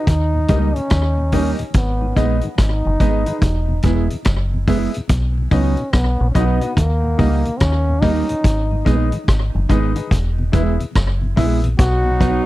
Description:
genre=roots reggae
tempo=72 BPM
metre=4/4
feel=swing 63% on 16ths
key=B major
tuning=A4 = 440 Hz
part: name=clear trombone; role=melody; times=0.0-12.5 s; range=A#3 to F#4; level=-23 LUFS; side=equal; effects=tape echo
part: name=warm grand piano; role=stabs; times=0.0-11.6 s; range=D#4 to E5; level=-26 LUFS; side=left 7 dB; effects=none
part: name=deep dub fingered electric bass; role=bass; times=0.1-12.4 s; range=E1 to D#2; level=-18 LUFS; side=equal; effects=none
part: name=vintage drum kit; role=drums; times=0.1-12.5 s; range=hi-hat, kick drum, rim click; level=-18 LUFS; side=equal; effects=none
part: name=mellow tonewheel organ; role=accompaniment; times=0.3-12.3 s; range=D#2 to E4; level=-26 LUFS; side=left 1 dB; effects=slow rotary speaker, slapback echo
part: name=mellow electric guitar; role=accompaniment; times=0.5-12.4 s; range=F#3 to E4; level=-24 LUFS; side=right 8 dB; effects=tape echo
part: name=clear horn section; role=second line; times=11.8-12.5 s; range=F#3 to D#4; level=-26 LUFS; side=left 3 dB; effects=tape echo
room=little or no reverb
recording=dry, close 1970s-style studio recording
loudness=-15 LUFS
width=side -16 dB against mid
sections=0.0-11.8 A section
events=none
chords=0.1 D#; 1.7 G#m; 3.4 E; 5.1 B; 6.8 D#; 8.4 G#m; 10.1 E; 11.8 B

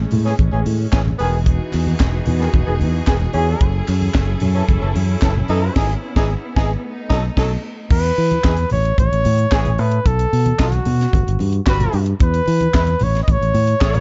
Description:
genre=disco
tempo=112 BPM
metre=4/4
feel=straight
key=E major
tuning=A4 = 440 Hz
part: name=clear studio string section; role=sustained chords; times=0.0-7.9 s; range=E3 to A4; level=-30 LUFS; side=equal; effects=none
part: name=fingered electric bass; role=bass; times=0.0-14.0 s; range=E1 to E3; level=-20 LUFS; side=equal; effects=none
part: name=tight funk drum kit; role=drums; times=0.1-14.0 s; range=crash cymbal, handclaps, hi-hat, kick drum, snare drum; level=-21 LUFS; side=equal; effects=none
part: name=congas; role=percussion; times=0.1-14.0 s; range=none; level=-28 LUFS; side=equal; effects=none
part: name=warm horn section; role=stabs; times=0.3-14.0 s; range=D#3 to C#5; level=-26 LUFS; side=equal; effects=none
part: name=group handclap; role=percussion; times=0.9-13.9 s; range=none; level=-41 LUFS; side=equal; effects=none
part: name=warm flugelhorn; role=melody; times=7.9-14.0 s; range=F#4 to D#5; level=-23 LUFS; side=equal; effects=none
room=small room ambience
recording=dark, warm production, nothing above 7.7 kHz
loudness=-17 LUFS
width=mono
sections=0.0-7.9 A section; 7.9-14.0 B section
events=band accent 5.8-7.9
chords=0.0 Amaj7; 1.2 Emaj9; 3.6 F#m9; 5.8 C#m9/G#; 6.8 B7; 7.9 E5; 8.7 A; 10.1 B7(no3); 11.1 Gmaj7; 12.2 E5; 13.0 Amaj7

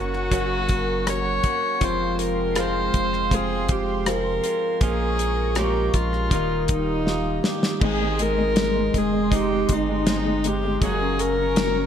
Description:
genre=pop ballad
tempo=80 BPM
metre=4/4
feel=straight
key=Ab major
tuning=A4 = 440 Hz
part: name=dark viola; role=melody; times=0.0-11.9 s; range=Eb4 to Db5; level=-25 LUFS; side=equal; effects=none
part: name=warm grand piano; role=accompaniment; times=0.0-11.9 s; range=Eb3 to Db5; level=-28 LUFS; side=left 3 dB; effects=wide subtle chorus
part: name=chorused pulse-width pad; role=sustained chords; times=0.0-11.9 s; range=Ab3 to Eb6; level=-30 LUFS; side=equal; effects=none
part: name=direct-recorded clean electric guitar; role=arpeggios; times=0.0-11.9 s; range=F2 to Ab4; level=-31 LUFS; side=right 7 dB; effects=ping-pong delay
part: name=sub bass with octave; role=bass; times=0.0-11.9 s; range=Eb1 to Bb1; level=-28 LUFS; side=equal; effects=none
part: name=damped 70s drum kit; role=drums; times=0.1-11.7 s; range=crash cymbal, hi-hat, kick drum, rim click, snare drum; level=-24 LUFS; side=equal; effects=gated reverb
room=moderate plate reverb, RT60 2.5 s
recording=bright 1980s-style digital production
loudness=-20 LUFS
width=side -9 dB against mid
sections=0.0-7.8 A section; 7.8-11.9 B section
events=drum fill 7.1-7.8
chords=0.0 Gb; 1.8 Fm; 4.8 Bbm7; 6.3 Ebadd9; 7.8 Ab; 10.8 Gb

